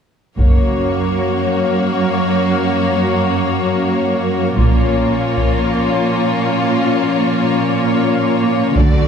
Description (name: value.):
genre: cinematic, epic orchestral film score.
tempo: free time.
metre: none.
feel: none.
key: F# major.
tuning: A4 = 441 Hz.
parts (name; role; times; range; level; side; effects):
rich studio violin section; melody; 0.4-9.1 s; C#5 to D5; -23 LUFS; left 4 dB; none.
warm symphonic violin section; second line; 0.4-9.1 s; E#4 to F#4; -23 LUFS; left 4 dB; none.
rich symphonic viola section; accompaniment; 0.4-9.1 s; A3 to A#3; -22 LUFS; equal; none.
mellow French horn section; sustained chords; 0.4-9.1 s; E#3 to D4; -20 LUFS; left 3 dB; none.
rich symphonic cello section; bass; 0.4-9.1 s; F#2 to D3; -19 LUFS; right 4 dB; none.
rich symphonic double bass section; bass; 0.4-0.9, 4.6-5.1, 8.8-9.1 s; F#1 to D2; -21 LUFS; right 3 dB; none.
taiko ensemble; drums; 0.4-1.4, 4.6-9.1 s; none; -16 LUFS; equal; none.
room: wet scoring stage reverb, RT60 1.6 s.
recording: heard from further back in the room.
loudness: -13 LUFS.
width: side -7 dB against mid.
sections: 0.4-9.1 A section.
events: build-up 0.4-9.1.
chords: 0.4 F#; 4.6 A#m.